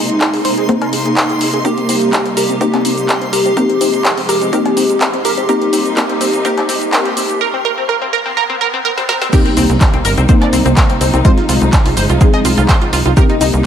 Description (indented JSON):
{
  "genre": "progressive house",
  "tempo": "125 BPM",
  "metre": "4/4",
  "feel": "straight",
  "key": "C minor",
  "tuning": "A4 = 441 Hz",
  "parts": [
    { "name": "plucky unison lead", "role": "melody", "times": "0.0-7.4 s", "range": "Eb4 to G4", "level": "-17 LUFS", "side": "equal", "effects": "sidechain pumping, tape echo" },
    { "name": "warm studio string section", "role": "sustained chords", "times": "0.0-13.7 s", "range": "C3 to Eb4", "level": "-22 LUFS", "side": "right 1 dB", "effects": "sidechain pumping" },
    { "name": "tight sequenced synth", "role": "arpeggios", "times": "0.0-13.5 s", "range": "C4 to Eb5", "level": "-19 LUFS", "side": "equal", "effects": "chorus, phaser, sidechain pumping, tape echo" },
    { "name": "wide unison pluck", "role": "stabs", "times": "0.0-13.7 s", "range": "Ab3 to C5", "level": "-18 LUFS", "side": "left 2 dB", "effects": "cassette tape, sidechain pumping, tape echo" },
    { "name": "backwards swelling texture", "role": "texture", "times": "0.0-7.4 s", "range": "C6", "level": "-29 LUFS", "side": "equal", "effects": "built-in reverb, sidechain pumping" },
    { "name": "deep house drum kit", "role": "drums", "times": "0.1-13.6 s", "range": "cabasa, crash cymbal, handclaps, hi-hat, snare drum", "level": "-18 LUFS", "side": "equal", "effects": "sidechain pumping on hats, sidechain pumping on perc, sidechain pumping on cymbals" },
    { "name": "electronic kick drum", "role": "drums", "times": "0.2-13.3 s", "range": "none", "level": "-12 LUFS", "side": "equal", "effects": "high-pass filter on kick, high-pass filter on room" },
    { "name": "cowbell and congas", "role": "percussion", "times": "0.2-13.5 s", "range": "none", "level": "-26 LUFS", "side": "left 3 dB", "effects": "none" },
    { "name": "riser, swell and impact", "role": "sound effects", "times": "4.1-11.2 s", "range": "none", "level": "-28 LUFS", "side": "equal", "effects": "none" },
    { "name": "breakbeat sampler-style drum kit", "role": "drums", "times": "9.3-13.5 s", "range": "hi-hat, shaker, snare drum", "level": "-30 LUFS", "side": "right 2 dB", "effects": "none" },
    { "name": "tight sequencer bass", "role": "bass", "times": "9.6-13.6 s", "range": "G1 to C2", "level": "-14 LUFS", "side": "equal", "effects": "sidechain pumping" }
  ],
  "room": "light reverb, digital ambience",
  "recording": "high-pass filter",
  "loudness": "-11 LUFS",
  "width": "side -8 dB against mid",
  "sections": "0.0-9.3 A section; 9.3-13.7 B section",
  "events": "build-up 0.0-9.3; filter sweep on synth arpeggio sound 0.0-9.3; filter sweep on synth pluck 0.0-9.3; filter sweep 0.0-9.3; riser 4.1-9.3; swell 8.4-9.3; drum fill 9.0-9.3; drop 9.3-13.7; impact 9.3-11.2",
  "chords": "0.0 Abadd9/C; 1.6 Cm7; 3.6 Fm7/C; 5.5 Eb6/C; 7.4 N.C.; 9.3 Cm7; 11.2 Fm7",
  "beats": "0.21 0.69 1.17 | 1.65 2.13 2.61 3.09 | 3.57 4.05 4.53 5.01 | 5.49 5.97 6.45 6.93 | 7.41 7.89 8.37 8.85 | 9.33 9.81 10.29 10.77 | 11.25 11.73 12.21 12.69 | 13.17 13.65"
}